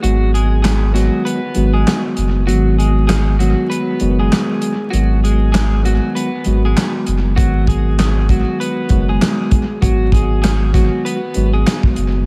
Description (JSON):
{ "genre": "hip hop, boom-bap hip-hop", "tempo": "98 BPM", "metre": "4/4", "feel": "swing 60% on 16ths", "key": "G# minor", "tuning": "A4 = 441 Hz", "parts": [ { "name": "clean electric guitar", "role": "melody", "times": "0.0-11.8 s", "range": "F#3 to B4", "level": "-26 LUFS", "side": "equal", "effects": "subtle chorus, high-pass filter, low-pass filter, analog delay" }, { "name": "mellow tine electric piano", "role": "accompaniment", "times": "0.0-12.2 s", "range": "D#3 to F#4", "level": "-21 LUFS", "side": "equal", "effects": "high-pass filter, low-pass filter, analog delay" }, { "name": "warm sub bass", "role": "bass", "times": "0.0-12.3 s", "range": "F#1 to G#1", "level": "-17 LUFS", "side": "equal", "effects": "none" }, { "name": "warm soul drum kit", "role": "drums", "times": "0.0-12.1 s", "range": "handclaps, hi-hat, kick drum, snare drum", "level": "-20 LUFS", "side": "equal", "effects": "analog delay" } ], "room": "small room ambience", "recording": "echo-heavy mix, vinyl crackle", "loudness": "-15 LUFS", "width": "mono", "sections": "0.0-12.3 A section", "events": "break 0.0-7.4", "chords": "0.0 G#m7", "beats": "| 0.03 0.64 1.25 1.87 | 2.48 3.09 3.70 4.32 | 4.93 5.54 6.15 6.76 | 7.38 7.99 8.60 9.21 | 9.82 10.44 11.05 11.66" }